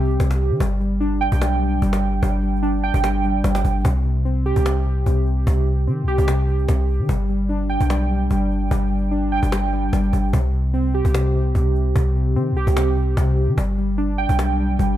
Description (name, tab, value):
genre	hip hop, trap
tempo	148 BPM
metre	4/4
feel	half-time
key	unclear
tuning	A4 = 440 Hz
part	warbly lo-fi synth keys	accompaniment	0.0-15.0 s	C3 to G5	-22 LUFS	equal	chorus, low-pass filter
part	warm 808-style bass	bass	0.0-15.0 s	G1 to Eb3	-20 LUFS	equal	none
part	cajon	drums	0.0-14.9 s	none	-28 LUFS	equal	none
room	little or no reverb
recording	none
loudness	-17 LUFS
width	side -12 dB against mid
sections	0.0-3.8 A section; 3.8-15.0 B section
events	none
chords	0.0 Cm; 0.6 G; 3.8 C5; 7.1 G; 10.3 C5; 13.6 G